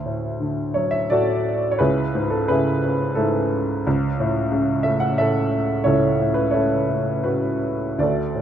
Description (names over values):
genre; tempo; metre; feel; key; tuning
classical, lyrical solo piano; 80-93 BPM; 3/4; rubato; F# minor; A4 = 441 Hz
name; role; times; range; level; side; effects
warm upright piano; solo; 0.0-8.4 s; C#2 to F#5; -19 LUFS; equal; none
room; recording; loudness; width
light reverb; dark, warm production; -19 LUFS; side -9 dB against mid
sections
0.0-8.4 A section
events
none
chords
0.0 D; 1.8 C#m7; 3.9 F#m7/C#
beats
0.39 1.10 | 1.80 2.50 3.18 | 3.86 4.52 5.19 | 5.87 6.54 7.25 | 8.00